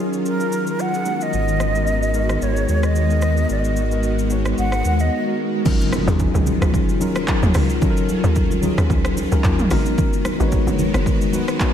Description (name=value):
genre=amapiano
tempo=111 BPM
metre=4/4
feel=swing 55% on 16ths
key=Eb minor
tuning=A4 = 440 Hz
part: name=mellow tine electric piano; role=accompaniment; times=0.0-11.7 s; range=Gb3 to Db5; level=-23 LUFS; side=left 3 dB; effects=medium stereo tremolo
part: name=granular cloud pad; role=sustained chords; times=0.0-11.7 s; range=Eb3 to Gb4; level=-26 LUFS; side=left 1 dB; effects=built-in reverb, analog chorus
part: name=deep house drum kit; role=drums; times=0.1-11.7 s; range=crash cymbal, handclaps, hi-hat, kick drum, rim click, shaker, toms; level=-23 LUFS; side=equal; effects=overdrive
part: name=breathy concert flute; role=melody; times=0.3-5.4 s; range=Bb4 to Gb5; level=-24 LUFS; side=right 1 dB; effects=ping-pong delay
part: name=sub bass with octave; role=bass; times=1.3-5.1 s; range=Ab1 to Eb2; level=-20 LUFS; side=equal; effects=none
part: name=congas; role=percussion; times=5.7-11.5 s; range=none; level=-28 LUFS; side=right 5 dB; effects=none
part: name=impact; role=sound effects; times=5.7-7.8 s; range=none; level=-27 LUFS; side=right 1 dB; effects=none
part: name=tight log drum bass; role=bass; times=6.1-11.1 s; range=Gb1 to Eb2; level=-19 LUFS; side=equal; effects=none
room=moderate lush hall reverb, RT60 1.7 s, digital ambience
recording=dreamy mix soaked in reverb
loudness=-17 LUFS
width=side -9 dB against mid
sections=0.0-5.7 A section; 5.7-11.7 B section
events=break 5.1-5.7; drop 5.7-11.7; impact 5.7-7.8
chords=0.0 Ebm9; 1.1 Abm7; 5.7 Ebm9; 9.7 Abm7